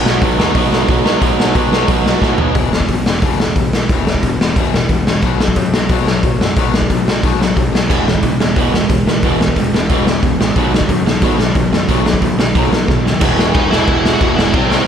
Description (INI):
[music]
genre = punk rock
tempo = 180 BPM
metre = 4/4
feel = straight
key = E major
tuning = A4 = 435 Hz
[part]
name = crunchy overdriven guitar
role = riff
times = 0.0-2.5, 7.9-14.9 s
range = B2 to E4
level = -18 LUFS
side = right 11 dB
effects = slapback echo
[part]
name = overdriven semi-hollow guitar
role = riff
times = 0.0-14.9 s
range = E2 to C4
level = -19 LUFS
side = left 10 dB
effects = slapback echo
[part]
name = fuzz picked electric bass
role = bass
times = 0.1-14.8 s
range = E1 to A2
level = -20 LUFS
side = equal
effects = overdrive
[part]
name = raw garage drum kit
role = drums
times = 0.1-14.8 s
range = crash cymbal, hi-hat, kick drum, snare drum, toms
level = -14 LUFS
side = equal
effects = none
[part]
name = biting lead guitar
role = melody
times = 13.5-14.9 s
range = C4 to F#4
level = -19 LUFS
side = equal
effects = overdrive, ping-pong delay
[sound]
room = light reverb, small room ambience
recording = none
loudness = -12 LUFS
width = side -8 dB against mid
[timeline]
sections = 0.0-2.6 A section; 2.6-13.2 B section; 13.2-14.9 C section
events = drum fill 2.2-2.6, 12.9-13.2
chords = 0.0 B; 2.6 E5; 5.2 B5; 7.9 E; 10.6 B; 13.2 E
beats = 0.22 0.55 0.89 | 1.22 1.55 1.89 2.22 | 2.56 2.89 3.23 3.56 | 3.89 4.23 4.56 4.90 | 5.23 5.56 5.90 6.23 | 6.56 6.90 7.23 7.56 | 7.90 8.23 8.56 8.90 | 9.23 9.56 9.89 10.23 | 10.56 10.89 11.22 11.56 | 11.89 12.22 12.55 12.88 | 13.22 13.55 13.88 14.21 | 14.54 14.87